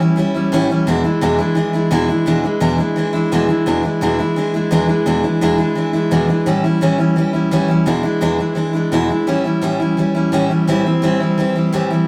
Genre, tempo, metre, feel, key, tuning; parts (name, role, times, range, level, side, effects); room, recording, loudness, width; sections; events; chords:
rock; 171 BPM; 4/4; straight; E mixolydian; A4 = 439 Hz
picked steel-string acoustic guitar; solo; 0.0-12.1 s; E2 to E4; -16 LUFS; equal
wet stone room reverb, RT60 1.1 s; rough rehearsal-room recording; -17 LUFS; mono
0.0-3.7 A section; 3.7-12.1 B section
0.0 A7; 0.9 E7; 6.5 A7; 7.9 E7; 9.3 A7; 10.7 Am7